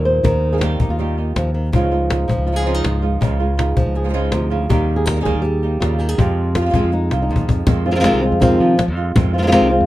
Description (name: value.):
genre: flamenco.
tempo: 162 BPM.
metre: 4/4.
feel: straight.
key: F minor.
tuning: A4 = 439 Hz.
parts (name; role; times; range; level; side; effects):
flamenco guitar; melody; 0.0-9.9 s; F2 to C5; -18 LUFS; equal; none.
modern bright fingered electric bass; bass; 0.0-9.9 s; C2 to F3; -19 LUFS; equal; none.
cajon; percussion; 0.1-9.7 s; none; -19 LUFS; left 2 dB; none.
flamenco guitar; stabs; 0.2-9.9 s; C3 to G4; -25 LUFS; right 5 dB; none.
room: moderate small room reverb, RT60 0.5 s.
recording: dark, warm production.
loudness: -15 LUFS.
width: side -15 dB against mid.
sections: 0.0-7.7 A section; 7.7-9.9 B section.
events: drum fill 7.1-7.7.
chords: 0.0 Eb; 1.7 Dbadd9; 4.7 Eb; 6.2 Fm7.